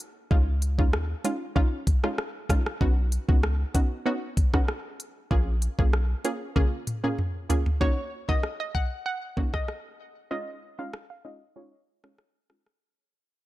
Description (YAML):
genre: dancehall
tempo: 96 BPM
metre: 4/4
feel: straight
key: Eb minor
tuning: A4 = 440 Hz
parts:
  - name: afro-pop drum kit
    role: drums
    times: 0.0-12.8 s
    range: hi-hat, kick drum, rim click, toms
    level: -24 LUFS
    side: equal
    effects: none
  - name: punchy chord stab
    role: accompaniment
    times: 0.3-12.7 s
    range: Ab3 to Ab4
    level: -31 LUFS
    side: right 2 dB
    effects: chorus, low-pass filter
  - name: warm 808-style bass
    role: bass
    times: 0.3-6.1 s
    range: Bb1 to Eb2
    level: -25 LUFS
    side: equal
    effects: none
  - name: hollow square pluck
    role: melody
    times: 7.8-12.1 s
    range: Db5 to Gb5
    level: -34 LUFS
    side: equal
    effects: chorus, low-pass filter
room: digital ambience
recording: none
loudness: -24 LUFS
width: side -16 dB against mid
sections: 0.0-7.8 A section; 7.8-12.8 B section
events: drum fill 6.6-7.8; fade-out 7.8-12.8; filter sweep 7.8-12.8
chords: 0.3 Dbadd9; 2.8 Badd9; 5.3 Bbm7; 7.8 Ebm7; 10.3 Dbadd9